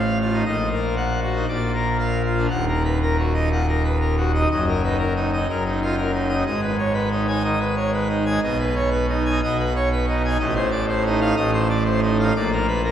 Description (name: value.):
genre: classical, organ toccata.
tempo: 122 BPM.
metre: 4/4.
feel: straight.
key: Eb minor.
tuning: A4 = 440 Hz.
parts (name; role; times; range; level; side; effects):
pipe organ, full organ; solo; 0.0-12.9 s; Eb1 to Ab5; -19 LUFS; equal; none.
room: wet church reverb, RT60 2.6 s.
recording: heard from further back in the room.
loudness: -19 LUFS.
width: side -10 dB against mid.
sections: 0.0-2.5 A section; 2.5-12.9 B section.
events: none.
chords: 0.5 Ebm/Bb; 1.5 Bb; 2.5 Ebm; 4.5 Ebm/Gb; 6.5 Abm; 8.4 Abm/Cb; 10.4 F7/A; 12.3 Bb.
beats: | 0.47 0.98 1.49 2.00 | 2.51 3.01 3.50 4.00 | 4.49 4.99 5.48 5.97 | 6.46 6.95 7.45 7.94 | 8.43 8.92 9.41 9.90 | 10.39 10.88 11.37 11.86 | 12.35 12.84.